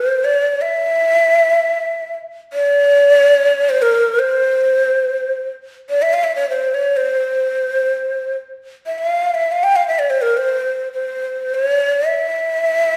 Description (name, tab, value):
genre	persian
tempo	free time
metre	none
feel	none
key	C dastgah homayun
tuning	A4 = 440 Hz
part	breathy ney	solo	0.0-13.0 s	Bb4 to G5	-16 LUFS	equal	none
room	wet recital hall reverb, RT60 1.4 s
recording	recorded in a church or concert hall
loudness	-16 LUFS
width	mono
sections	0.0-8.5 A section; 8.5-13.0 A section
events	none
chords	none